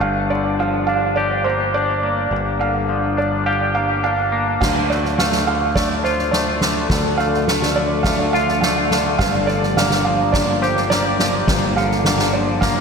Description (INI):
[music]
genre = post-rock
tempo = 105 BPM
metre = 4/4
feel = straight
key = G minor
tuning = A4 = 440 Hz
[part]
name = felt-muted upright piano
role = arpeggios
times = 0.0-12.8 s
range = C5 to F5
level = -22 LUFS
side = right 4 dB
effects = diffuse ambient delay
[part]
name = twangy electric guitar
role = arpeggios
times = 0.0-12.8 s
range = G2 to G4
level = -21 LUFS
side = left 3 dB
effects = analog chorus, diffuse ambient delay
[part]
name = growling fingered electric bass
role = bass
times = 0.0-12.8 s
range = G1 to D2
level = -24 LUFS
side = equal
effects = overdrive
[part]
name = ethereal airy pad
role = sustained chords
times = 6.0-12.8 s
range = F3 to D5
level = -25 LUFS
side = left 1 dB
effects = ensemble chorus, built-in reverb
[part]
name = soft-mallet drum kit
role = drums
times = 4.6-12.8 s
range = crash cymbal, kick drum, snare drum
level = -20 LUFS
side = right 1 dB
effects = none
[sound]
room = wet lush hall reverb, RT60 2.6 s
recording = dreamy mix soaked in reverb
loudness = -16 LUFS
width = side -5 dB against mid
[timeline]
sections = 0.0-4.6 A section; 4.6-12.8 B section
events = none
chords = 0.0 Gm7; 4.6 Dm; 9.2 Gm7